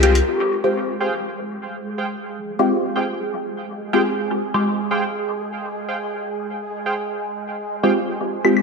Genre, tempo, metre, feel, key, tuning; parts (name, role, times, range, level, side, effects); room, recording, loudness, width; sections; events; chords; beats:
dub techno; 123 BPM; 4/4; straight; F minor; A4 = 440 Hz
warbly lo-fi synth keys; riff; 0.0-7.9 s; Ab4 to G5; -28 LUFS; right 3 dB; chorus, dub echo
filtered dub chord stab; stabs; 0.0-4.8, 7.8-8.6 s; Ab3 to G4; -20 LUFS; left 1 dB; phaser, dub echo
bubbling stepped-filter texture; texture; 0.0-8.6 s; Ab3 to C5; -28 LUFS; right 2 dB; chorus, built-in reverb
claves; percussion; 8.4-8.6 s; -26 LUFS; left 4 dB
wet lush hall reverb, RT60 1.8 s, digital ambience; bright 1980s-style digital production; -20 LUFS; side -4 dB against mid
0.3-8.6 A section
0.3 Fmadd9
| 0.27 0.76 1.25 1.74 | 2.23 2.71 3.20 3.69 | 4.18 4.66 5.15 5.64 | 6.13 6.62 7.10 7.59 | 8.08 8.57